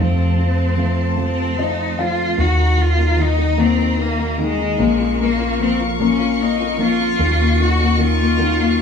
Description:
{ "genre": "six-eight pop ballad", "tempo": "50 BPM (dotted quarters)", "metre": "6/8", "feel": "straight", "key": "unclear", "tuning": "A4 = 440 Hz", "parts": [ { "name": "rich cello", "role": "melody", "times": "0.0-8.8 s", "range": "Ab3 to Gb4", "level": "-21 LUFS", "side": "right 1 dB", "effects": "none" }, { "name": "warm upright piano", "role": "accompaniment", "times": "0.0-8.8 s", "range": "Eb3 to F5", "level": "-20 LUFS", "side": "left 7 dB", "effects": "none" }, { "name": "warm studio string section", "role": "sustained chords", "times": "0.0-8.8 s", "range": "Gb3 to Db6", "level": "-27 LUFS", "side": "left 3 dB", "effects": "none" }, { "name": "clean electric guitar", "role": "arpeggios", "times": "0.0-8.8 s", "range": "F2 to Gb4", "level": "-26 LUFS", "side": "right 5 dB", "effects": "harmonic tremolo" }, { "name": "hollow-body short-scale fingered electric bass", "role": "bass", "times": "0.0-8.8 s", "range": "Bb1 to F2", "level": "-20 LUFS", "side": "equal", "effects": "none" } ], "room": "moderate studio reverb, RT60 0.8 s", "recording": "band playing live in one room, small room reverb", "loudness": "-15 LUFS", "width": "side -6 dB against mid", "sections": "0.0-2.4 A section; 2.4-8.8 B section", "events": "upright piano fill 1.2-2.4", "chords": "0.0 F; 2.4 Ebm; 4.8 Bbm; 7.2 Ebm7" }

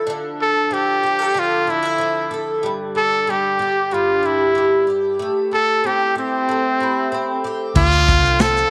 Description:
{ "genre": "acoustic pop", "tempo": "94 BPM", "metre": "4/4", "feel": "straight", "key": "D minor", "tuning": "A4 = 440 Hz", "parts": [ { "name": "picked twelve-string acoustic guitar", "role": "accompaniment", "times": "0.0-8.7 s", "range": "G2 to A4", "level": "-24 LUFS", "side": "equal", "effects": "double-tracked" }, { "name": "brilliant trumpet", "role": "melody", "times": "0.4-8.7 s", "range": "C4 to A4", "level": "-20 LUFS", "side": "equal", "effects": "tape echo" }, { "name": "vintage muted fingered electric bass", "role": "bass", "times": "7.8-8.6 s", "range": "C2 to D2", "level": "-21 LUFS", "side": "equal", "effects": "none" }, { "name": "modern studio drum kit", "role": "drums", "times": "7.8-8.7 s", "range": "crash cymbal, kick drum, shaker, snare drum", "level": "-22 LUFS", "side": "equal", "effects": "none" } ], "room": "moderate spring reverb, RT60 2.4 s", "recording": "none", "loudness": "-18 LUFS", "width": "mono", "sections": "0.0-7.8 A section", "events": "none", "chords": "0.0 Dmadd9; 2.6 G5; 5.2 Am7; 7.8 Dm7" }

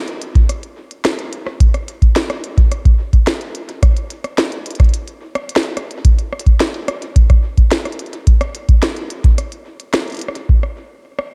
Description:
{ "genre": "IDM", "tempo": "108 BPM", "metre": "4/4", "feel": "straight", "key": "none", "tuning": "none", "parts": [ { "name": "glitchy drum kit", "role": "drums", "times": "0.1-11.3 s", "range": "hi-hat, rim click, snare drum", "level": "-23 LUFS", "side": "equal", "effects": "tape echo" }, { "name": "electronic kick drum", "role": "drums", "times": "0.4-10.6 s", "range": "none", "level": "-13 LUFS", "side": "equal", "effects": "none" } ], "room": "light reverb, digital ambience", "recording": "dark, warm production", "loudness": "-16 LUFS", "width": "mono", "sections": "0.0-10.5 A section", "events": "break 9.4-10.5", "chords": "none" }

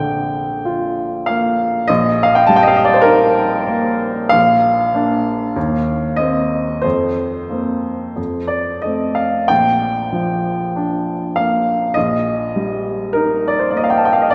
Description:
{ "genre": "classical, romantic nocturne for solo piano", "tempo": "44-52 BPM", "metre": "4/4", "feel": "rubato", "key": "Bb major", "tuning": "A4 = 438 Hz", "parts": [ { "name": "warm baby grand piano", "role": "solo", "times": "0.0-14.3 s", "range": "Bb1 to A5", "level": "-17 LUFS", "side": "equal", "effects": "none" } ], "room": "wet church reverb, RT60 3.4 s", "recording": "recorded in a church or concert hall", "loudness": "-17 LUFS", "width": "mono", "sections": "0.0-14.3 A section", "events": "none", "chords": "0.0 Bb; 1.9 Eb/Bb; 4.3 Bb; 5.6 Eb5; 6.8 Fsus4; 8.2 F; 9.5 Bb; 12.0 Eb/Bb" }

